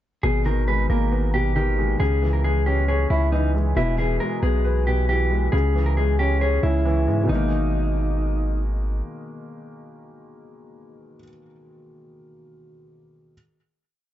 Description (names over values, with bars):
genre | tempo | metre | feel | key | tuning
hip hop, trap | 136 BPM | 4/4 | half-time | G# harmonic minor | A4 = 440 Hz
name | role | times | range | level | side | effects
mellow electric guitar | melody | 0.2-8.6 s | D#4 to B4 | -25 LUFS | left 1 dB | dub echo
dark baby grand piano | accompaniment | 0.2-13.3 s | B2 to C#5 | -27 LUFS | left 1 dB | dub echo
long sustained 808-style bass | bass | 0.2-9.0 s | E1 to G#2 | -22 LUFS | equal | none
room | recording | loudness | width
light reverb, small room ambience | echo-heavy mix, nothing above 7.7 kHz | -19 LUFS | side -12 dB against mid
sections
0.2-7.3 breakdown; 7.3-10.8 final chord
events
none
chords
0.2 G#madd9; 2.0 C#m; 3.8 E; 5.5 C#m; 7.3 G#madd9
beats
| 0.24 0.68 1.12 1.56 | 2.00 2.44 2.88 3.32 | 3.77 4.21 4.65 5.09 | 5.53 5.97 6.41 6.85 | 7.29 7.74 8.18 8.62 | 9.06 9.50 9.94 10.38